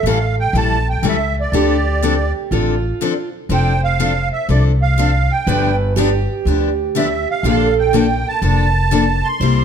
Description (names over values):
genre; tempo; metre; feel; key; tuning
acoustic string swing (jazz manouche); 122 BPM; 4/4; swing 65% on 8ths; D minor, F major from 3.5 s; A4 = 440 Hz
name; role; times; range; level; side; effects
musette accordion; melody; 0.0-9.6 s; D5 to C6; -20 LUFS; right 5 dB; none
picked steel-string acoustic guitar; second line; 0.0-9.6 s; F4 to C5; -22 LUFS; right 9 dB; none
upright bass; bass; 0.0-9.6 s; F1 to D2; -17 LUFS; equal; none
picked steel-string acoustic guitar; accompaniment; 0.1-9.6 s; C3 to A4; -20 LUFS; left 7 dB; none
room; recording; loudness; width
light reverb; close, detailed microphones; -14 LUFS; side -7 dB against mid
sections
0.0-3.5 A section; 3.5-9.6 B section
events
break 3.0-3.5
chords
0.0 A7; 1.5 Dm7; 3.5 F6; 5.5 G7; 7.4 Bbmaj7